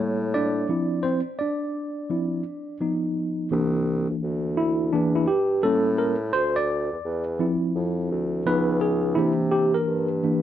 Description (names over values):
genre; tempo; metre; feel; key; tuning
hip hop, jazz-hop; 85 BPM; 4/4; swing 64% on 16ths; D minor; A4 = 440 Hz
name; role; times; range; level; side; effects
tine electric piano; accompaniment; 0.0-10.4 s; E3 to D5; -23 LUFS; equal; medium stereo tremolo
dark bassoon; bass; 0.0-10.4 s; C2 to C3; -27 LUFS; equal; none
room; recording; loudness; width
light reverb; dark, warm production; -22 LUFS; side -11 dB against mid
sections
0.0-3.5 A section; 3.5-10.4 B section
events
tine electric piano solo 0.0-3.5, 3.5-10.4; break 0.7-3.5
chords
0.0 A7b9; 0.7 Dm9; 2.8 B; 3.5 C9; 5.6 A7b9; 6.3 Dm9; 8.5 C#9; 9.2 C9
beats
| 0.70 1.40 2.11 2.81 | 3.52 4.23 4.93 5.64 | 6.34 7.05 7.76 8.46 | 9.17 9.87